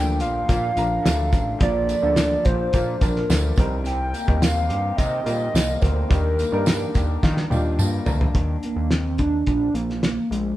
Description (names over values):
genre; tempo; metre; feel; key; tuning
indie pop, bedroom pop; 107 BPM; 4/4; straight; Eb lydian; A4 = 440 Hz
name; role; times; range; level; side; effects
warbly nostalgic lead; melody; 0.0-10.6 s; Ab3 to G5; -24 LUFS; right 1 dB; chorus, tremolo
electric guitar through a small old amp; accompaniment; 0.0-8.9 s; Bb2 to G4; -30 LUFS; left 4 dB; warbly pitch drift
warm upright piano; accompaniment; 0.0-8.4 s; F3 to Bb5; -30 LUFS; right 1 dB; none
fat analog bass; bass; 0.0-10.5 s; A1 to Eb3; -24 LUFS; equal; none
cloth-damped thuddy drum kit; drums; 0.2-10.4 s; hi-hat, kick drum, snare drum, toms; -22 LUFS; equal; none
tambourine; percussion; 0.2-8.2 s; none; -39 LUFS; right 4 dB; none
room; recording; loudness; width
moderate large studio reverb, RT60 1.3 s; band playing live in one room; -19 LUFS; side -15 dB against mid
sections
0.0-8.3 A section; 8.3-10.6 B section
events
upright piano fill 6.7-8.3; drum fill 7.2-8.3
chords
0.0 Bbmaj7; 3.6 Cm7; 6.1 Ebmaj7; 8.3 Eb5